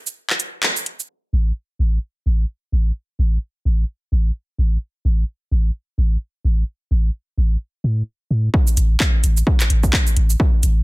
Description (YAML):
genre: minimal techno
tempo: 129 BPM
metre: 4/4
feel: swing 58% on 16ths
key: unclear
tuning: A4 = 439 Hz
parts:
  - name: house drum kit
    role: drums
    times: 0.1-1.1, 8.7-10.7 s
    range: cabasa, handclaps, hi-hat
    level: -21 LUFS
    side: equal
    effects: overdrive
  - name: punchy sub bass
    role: bass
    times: 1.3-10.8 s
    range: A1 to A2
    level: -16 LUFS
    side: equal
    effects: sidechain pumping
  - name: electronic kick drum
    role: drums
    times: 8.5-10.5 s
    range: none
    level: -17 LUFS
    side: equal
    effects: overdrive
room: little or no reverb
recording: dense, heavily limited modern master, low-pass filter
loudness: -18 LUFS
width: side -21 dB against mid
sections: 0.0-1.1 A section; 1.1-8.5 B section; 8.5-10.8 A section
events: break 0.0-1.1; drop 0.0-1.1, 8.5-10.8; band accent 0.6; filter sweep 1.1-8.5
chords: none